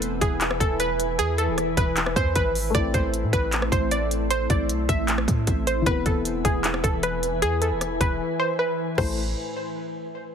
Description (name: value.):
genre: hip hop, trap.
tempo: 154 BPM.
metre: 4/4.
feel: half-time.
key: A harmonic minor.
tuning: A4 = 440 Hz.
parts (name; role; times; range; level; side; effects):
glassy wavetable pluck; melody; 0.0-9.2 s; G#4 to E5; -27 LUFS; right 2 dB; chorus, tape echo.
felt-muted upright piano; accompaniment; 0.0-9.2 s; E3 to C5; -33 LUFS; left 7 dB; none.
glassy FM pad; sustained chords; 0.0-9.2 s; E3 to G#5; -28 LUFS; equal; ensemble chorus, built-in reverb.
warm 808-style bass; bass; 0.0-9.3 s; E1 to A2; -28 LUFS; equal; none.
trap drum kit; drums; 0.0-9.1 s; crash cymbal, handclaps, hi-hat, kick drum, rim click; -25 LUFS; equal; none.
room: light reverb, digital ambience.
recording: heavily compressed radio sound, multiband compression.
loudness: -21 LUFS.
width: side -7 dB against mid.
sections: 0.0-9.0 A section; 9.0-10.3 B section.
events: drums muted 8.2-9.0.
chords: 0.0 E; 2.7 Am; 5.9 E; 9.0 Am.